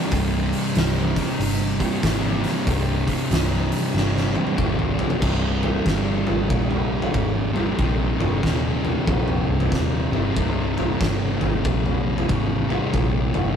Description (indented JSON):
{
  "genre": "stoner and doom metal",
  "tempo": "94 BPM",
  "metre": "4/4",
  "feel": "swing 64% on 8ths",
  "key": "unclear",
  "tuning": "A4 = 441 Hz",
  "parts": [
    { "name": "fuzz guitar", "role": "riff", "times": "0.0-13.6 s", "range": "C2 to C3", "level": "-24 LUFS", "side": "equal", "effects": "distortion" },
    { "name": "picked electric bass", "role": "bass", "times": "0.1-13.6 s", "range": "C1 to Bb1", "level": "-25 LUFS", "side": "equal", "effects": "overdrive" },
    { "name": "oversized low-tuned drum kit", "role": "drums", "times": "0.1-13.5 s", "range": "crash cymbal, hi-hat, kick drum, snare drum, toms", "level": "-24 LUFS", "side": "equal", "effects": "none" }
  ],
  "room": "light reverb",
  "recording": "rough rehearsal-room recording, tube saturation",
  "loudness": "-19 LUFS",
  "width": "side -8 dB against mid",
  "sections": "0.0-5.2 A section; 5.2-13.6 B section",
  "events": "drum fill 3.9-5.2",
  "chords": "0.0 C5",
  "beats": "| 0.12 0.75 1.39 2.03 | 2.66 3.30 3.94 4.58 | 5.22 5.86 6.50 7.14 | 7.78 8.43 9.07 9.71 | 10.36 11.00 11.65 12.30 | 12.94"
}